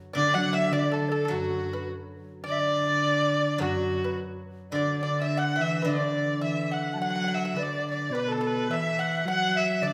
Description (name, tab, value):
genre	chinese traditional, Chinese chamber ensemble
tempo	106 BPM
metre	2/4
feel	straight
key	D gong mode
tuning	A4 = 438 Hz
part	steel-string zither	accompaniment	0.0-7.6 s	D3 to F#3	-36 LUFS	equal	none
part	pipa	second line	0.1-9.9 s	F#4 to F#5	-38 LUFS	equal	none
part	rich erhu	melody	0.2-9.9 s	F#4 to F#5	-31 LUFS	equal	none
part	bright reedy large dizi	second line	0.2-9.9 s	F#4 to A5	-34 LUFS	equal	none
part	warm cello	second line	0.2-9.9 s	F#2 to F#3	-33 LUFS	equal	none
room	wet recital hall reverb, RT60 1.8 s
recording	none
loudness	-27 LUFS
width	mono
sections	0.0-7.0 A section; 7.0-9.9 B section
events	none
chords	none